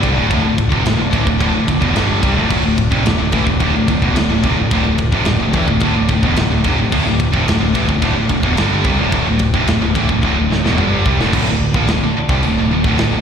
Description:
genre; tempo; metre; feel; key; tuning
heavy metal; 109 BPM; 4/4; straight; D minor; A4 = 442 Hz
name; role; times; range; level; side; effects
warm studio string section; sustained chords; 0.0-13.2 s; F3 to D5; -28 LUFS; left 2 dB; none
heavy high-gain guitar; riff; 0.0-13.2 s; D2 to G3; -20 LUFS; left 12 dB; distortion
heavy high-gain guitar; riff; 0.0-13.2 s; D2 to G3; -19 LUFS; right 12 dB; distortion
sludgy distorted guitar; riff; 0.0-13.2 s; D2 to G3; -22 LUFS; equal; overdrive, slapback echo
growling picked electric bass; bass; 0.0-13.2 s; D1 to C2; -19 LUFS; equal; overdrive
tight metal drum kit; drums; 0.0-13.1 s; crash cymbal, kick drum, ride cymbal, snare drum, toms; -20 LUFS; left 1 dB; none
room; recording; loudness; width
little or no reverb; live gig heard through the venue's PA, recital hall reverb; -13 LUFS; side -7 dB against mid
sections
0.0-11.3 A section; 11.3-13.2 B section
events
drum fill 10.2-11.3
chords
0.0 Dm

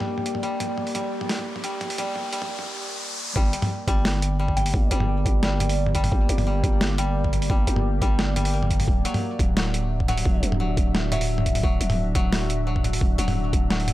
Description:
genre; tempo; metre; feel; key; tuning
half-time drum and bass; 174 BPM; 4/4; half-time; unclear; A4 = 440 Hz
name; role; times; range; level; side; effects
deep dark ambient pad; sustained chords; 0.0-13.9 s; Bb3 to E5; -31 LUFS; equal; chorus, built-in reverb, sidechain pumping
koto; arpeggios; 0.0-13.9 s; F#3 to Bb3; -31 LUFS; left 2 dB; low-pass filter, tape echo
boom bap sampler-style drum kit; drums; 0.0-13.9 s; hi-hat, snare drum, toms; -27 LUFS; equal; overdrive
riser; sound effects; 0.1-3.4 s; none; -34 LUFS; left 1 dB; none
metallic inharmonic drone; texture; 0.0-2.7 s; G4; -40 LUFS; equal; chorus, built-in reverb
growling 808-style bass; bass; 3.4-13.9 s; D1 to G1; -24 LUFS; equal; none
electronic kick drum; drums; 3.4-13.6 s; none; -23 LUFS; equal; overdrive
soft synth bell; melody; 4.6-4.8, 10.1-11.6 s; E5 to G5; -35 LUFS; equal; chorus, phaser, analog delay
room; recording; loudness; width
little or no reverb; dry, gritty hardware recording, high-pass filter; -21 LUFS; side -16 dB against mid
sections
0.0-3.4 A section; 3.4-13.9 B section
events
build-up 0.0-3.4; filter sweep 0.0-3.4; riser 0.1-3.4; drop 3.4-13.9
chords
0.0 Gm; 8.9 Dadd9

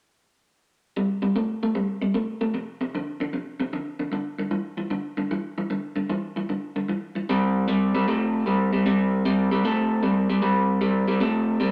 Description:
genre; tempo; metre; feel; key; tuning
blues; 152 BPM; 4/4; swing 67% on 8ths; unclear; A4 = 440 Hz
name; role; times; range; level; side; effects
electric guitar through a small old amp; solo; 1.0-11.7 s; F2 to A3; -25 LUFS; equal; spring reverb
room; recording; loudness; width
wet studio reverb, RT60 0.5 s; none; -25 LUFS; mono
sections
1.0-7.3 A section; 7.3-11.7 B section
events
none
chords
1.0 C5; 2.6 F5; 4.1 G5; 7.3 C5

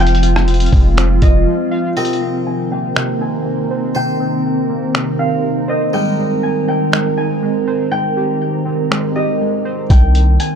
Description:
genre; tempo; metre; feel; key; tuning
hip hop, atmospheric cloud-rap; 121 BPM; 4/4; half-time; C minor; A4 = 435 Hz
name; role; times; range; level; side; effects
concert harp; melody; 0.0-10.6 s; Eb5 to Ab5; -22 LUFS; left 1 dB; low-pass filter, ping-pong delay
glassy FM pad; sustained chords; 0.0-10.6 s; Eb3 to Bb4; -18 LUFS; right 1 dB; ensemble chorus, built-in reverb, sidechain pumping, low-pass filter
warbly lo-fi synth keys; arpeggios; 0.0-9.9 s; C3 to F5; -23 LUFS; right 2 dB; chorus, low-pass filter, ping-pong delay
long sustained 808-style bass; bass; 0.0-1.5, 9.9-10.4 s; F1 to C2; -12 LUFS; equal; none
harpsichord; texture; 0.0-9.9 s; G3 to F5; -27 LUFS; right 1 dB; none
lo-fi sampler-style drum kit; drums; 0.1-10.5 s; finger snaps, hi-hat, kick drum, rim click; -14 LUFS; equal; none
room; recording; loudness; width
little or no reverb; dark, warm production; -13 LUFS; side -7 dB against mid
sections
0.0-2.0 A section; 2.0-9.9 B section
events
break 1.5-2.0, 9.4-9.9; filter sweep 2.0-9.9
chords
0.0 Fmadd9; 2.0 Cm7; 5.9 Abmaj7; 9.9 Cm7

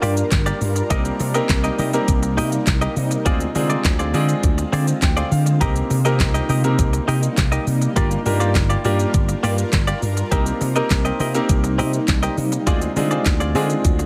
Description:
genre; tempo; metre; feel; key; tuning
dance-pop; 102 BPM; 4/4; straight; C minor; A4 = 443 Hz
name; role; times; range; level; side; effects
clear grand piano; accompaniment; 0.0-14.1 s; Ab3 to G5; -26 LUFS; equal; sidechain pumping
shimmering ambient pad; sustained chords; 0.0-14.1 s; C3 to Bb4; -30 LUFS; equal; chorus, built-in reverb, sidechain pumping
direct-recorded clean electric guitar; riff; 0.0-14.0 s; Bb3 to Eb5; -28 LUFS; equal; subtle chorus
slap bass with an envelope filter; bass; 0.0-14.0 s; G1 to D3; -23 LUFS; equal; sidechain pumping
pop drum kit; drums; 0.0-14.1 s; handclaps, hi-hat, kick drum, shaker, snare drum; -24 LUFS; equal; none
room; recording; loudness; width
light reverb, digital ambience; none; -19 LUFS; mono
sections
0.0-14.1 A section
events
grand piano fill 4.7-5.6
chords
0.0 Gm7; 0.9 Cm7; 3.3 Dm7b5; 5.6 Cm7; 8.0 Gm7; 10.3 Cm7; 12.7 Dm7b5

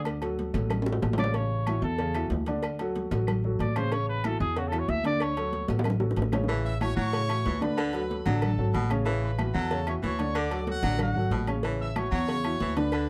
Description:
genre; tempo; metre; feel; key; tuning
latin, salsa; 187 BPM; 4/4; straight; A major; A4 = 441 Hz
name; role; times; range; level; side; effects
warm upright piano; accompaniment; 0.0-13.0 s; C#3 to D5; -34 LUFS; equal; none
upright bass; bass; 0.0-13.1 s; G#1 to A2; -32 LUFS; equal; none
agogo bells and timbales; percussion; 0.1-13.1 s; none; -41 LUFS; equal; none
claves; percussion; 0.1-13.1 s; none; -46 LUFS; equal; none
congas; percussion; 0.1-13.1 s; none; -38 LUFS; equal; none
cowbell and bongos; percussion; 0.1-13.1 s; none; -39 LUFS; equal; none
warm trumpet; melody; 1.2-5.7 s; F#4 to E5; -34 LUFS; equal; none
bright baritone saxophone; second line; 6.5-13.1 s; B2 to F#3; -36 LUFS; equal; none
bright trumpet section; melody; 6.7-13.1 s; F#4 to E6; -36 LUFS; equal; none
room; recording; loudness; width
light reverb; dark, warm production; -28 LUFS; mono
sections
0.0-6.5 A section; 6.5-13.1 B section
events
trumpet solo 0.0-6.5; drum fill 0.7-1.3, 5.7-6.5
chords
0.1 D; 1.3 A6; 2.6 D; 3.9 A6; 5.2 D; 6.5 A6; 7.8 D; 9.1 A6; 10.3 D; 11.6 A6

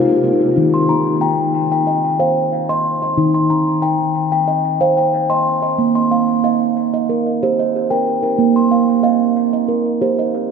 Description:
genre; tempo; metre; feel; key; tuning
world meditative, meditative tuned percussion; 92 BPM; 4/4; straight; Eb major pentatonic; A4 = 442 Hz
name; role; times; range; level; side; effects
shimmering ambient pad; sustained chords; 0.0-0.5 s; C3 to Eb4; -27 LUFS; equal; chorus, built-in reverb
steel tongue drum; arpeggios; 0.0-10.5 s; Eb3 to C6; -14 LUFS; right 1 dB; tape echo
room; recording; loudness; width
wet cathedral reverb, RT60 4.5 s; none; -14 LUFS; side -6 dB against mid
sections
0.6-10.5 A section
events
steel tongue drum fill 0.0-0.6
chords
0.0 Ab; 0.6 Eb; 5.8 Bb5

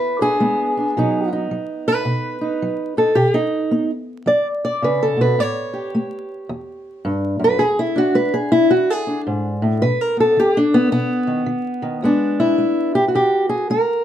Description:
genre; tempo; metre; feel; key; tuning
acoustic country blues, solo or duo; 108 BPM; 4/4; swing 63% on 8ths; E mixolydian; A4 = 440 Hz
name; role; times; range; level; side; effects
fingerpicked old ladder-braced acoustic guitar; solo; 0.0-14.0 s; E2 to D5; -16 LUFS; equal; none
room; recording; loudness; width
moderate small room reverb, RT60 0.5 s; dark, warm production, vinyl crackle; -16 LUFS; side -10 dB against mid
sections
0.0-12.0 A section; 12.0-14.0 B section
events
steel-string acoustic guitar solo 0.0-12.0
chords
0.0 E7; 0.9 B; 5.4 A7; 7.6 E7; 9.8 B; 12.0 E7

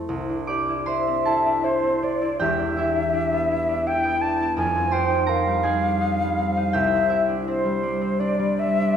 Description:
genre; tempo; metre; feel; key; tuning
classical, impressionist duo for flute and harp; 68-87 BPM; 3/4; rubato; C major; A4 = 442 Hz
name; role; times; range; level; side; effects
concert harp; accompaniment; 0.0-9.0 s; E1 to D6; -23 LUFS; right 2 dB; none
silver concert flute; melody; 0.9-9.0 s; C5 to A5; -23 LUFS; left 2 dB; none
room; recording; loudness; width
wet scoring stage reverb, RT60 1.8 s; heard from further back in the room; -20 LUFS; side -8 dB against mid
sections
0.1-9.0 A section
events
none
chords
0.1 C69; 2.4 Em7; 4.6 Fm9; 6.7 Cadd9

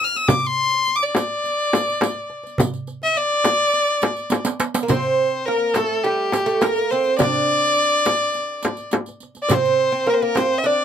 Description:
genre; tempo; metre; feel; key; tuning
Arabic maqam ensemble; 104 BPM; 4/4; straight; D maqam bayati; A4 = 441 Hz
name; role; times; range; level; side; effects
rich violin; melody; 0.0-10.8 s; G4 to F6; -19 LUFS; left 1 dB; none
darbuka; percussion; 0.0-10.7 s; none; -25 LUFS; right 2 dB; none
riq; percussion; 0.2-10.7 s; none; -29 LUFS; right 5 dB; none
frame drum; percussion; 0.3-10.5 s; none; -21 LUFS; left 1 dB; none
oud; second line; 4.8-10.8 s; G3 to D4; -23 LUFS; right 5 dB; none
open-back banjo; second line; 4.9-10.8 s; G4 to D5; -25 LUFS; left 4 dB; none
room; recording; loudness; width
light reverb; none; -17 LUFS; side -8 dB against mid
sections
0.0-4.9 A section; 4.9-10.8 B section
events
drum fill 4.3-4.9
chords
none

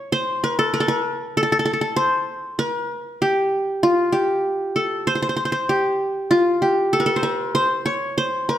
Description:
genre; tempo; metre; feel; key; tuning
arabic; 97 BPM; 4/4; straight; A maqam saba; A4 = 439 Hz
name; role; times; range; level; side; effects
qanun; solo; 0.0-8.6 s; F4 to C#5; -19 LUFS; equal; none
room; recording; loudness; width
moderate recital hall reverb, RT60 1.6 s; none; -18 LUFS; side -11 dB against mid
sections
0.0-8.6 A section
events
none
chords
none

